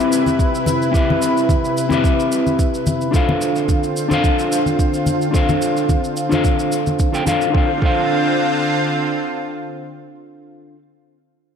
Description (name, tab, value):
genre	sunset chillout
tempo	109 BPM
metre	4/4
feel	swing 54% on 16ths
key	D dorian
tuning	A4 = 442 Hz
part	mellow electric guitar	accompaniment	0.0-10.8 s	C4 to G5	-19 LUFS	moving between left 4 dB and right 3 dB	auto-pan, ping-pong delay
part	lush unison pad	sustained chords	0.0-10.5 s	C3 to B4	-21 LUFS	equal	chorus
part	shaker	drums	0.0-7.5 s	none	-32 LUFS	right 1 dB	studio reverb
part	congas	percussion	0.3-7.4 s	none	-24 LUFS	left 2 dB	none
part	electronic kick drum	drums	0.4-8.0 s	none	-18 LUFS	right 1 dB	studio reverb
room	moderate plate reverb, RT60 1.5 s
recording	dreamy mix soaked in reverb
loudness	-15 LUFS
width	side -7 dB against mid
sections	0.0-7.5 A section; 7.5-9.7 B section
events	filter sweep on analog synth pad 0.0-7.5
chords	0.0 Cmaj7; 3.1 Dm7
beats	0.39 | 0.94 1.49 2.04 2.59 | 3.14 3.69 4.24 4.79 | 5.34 5.89 6.45 7.00 | 7.55 8.10 8.65 9.20